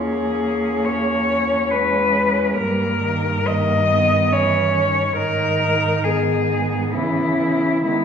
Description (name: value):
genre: classical, lyrical piece for cello ensemble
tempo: 64-71 BPM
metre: 3/4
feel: rubato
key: unclear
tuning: A4 = 440 Hz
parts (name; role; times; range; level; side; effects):
- muted cello; melody; 0.0-8.0 s; E4 to D#5; -19 LUFS; left 3 dB; none
- muted cello; second line; 0.0-8.0 s; A#3 to D#4; -25 LUFS; right 6 dB; none
- muted cello; accompaniment; 0.0-8.0 s; D#3 to Bb3; -25 LUFS; equal; none
- muted cello; bass; 0.0-8.0 s; E2 to D#3; -25 LUFS; right 2 dB; none
room: wet recital hall reverb, RT60 1.6 s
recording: recorded in a church or concert hall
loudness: -17 LUFS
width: side -7 dB against mid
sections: 0.0-8.0 A section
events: none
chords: 0.0 C#m/E; 2.6 D#7/G; 5.2 G#m; 6.9 C#m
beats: 0.85 1.70 | 2.56 3.46 4.32 | 5.18 6.05 6.95 | 7.87